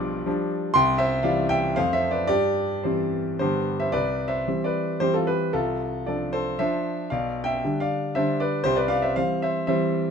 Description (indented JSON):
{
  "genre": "classical, romantic triple-time dance for piano with dotted rhythms",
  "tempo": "102-128 BPM",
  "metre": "3/4",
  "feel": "rubato",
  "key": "C major",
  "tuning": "A4 = 442 Hz",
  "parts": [
    { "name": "clear grand piano", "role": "solo", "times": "0.0-10.1 s", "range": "B1 to D6", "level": "-22 LUFS", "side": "equal", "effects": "none" }
  ],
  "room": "moderate studio reverb, RT60 0.8 s",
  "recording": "none",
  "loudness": "-22 LUFS",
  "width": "side -6 dB against mid",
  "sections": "0.0-3.9 A section; 3.9-10.1 B section",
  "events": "none",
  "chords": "0.0 G7/B; 0.7 C; 1.8 F; 2.3 C/G; 3.4 G; 3.9 C; 5.5 Dm7/C; 7.1 G/B; 8.6 C"
}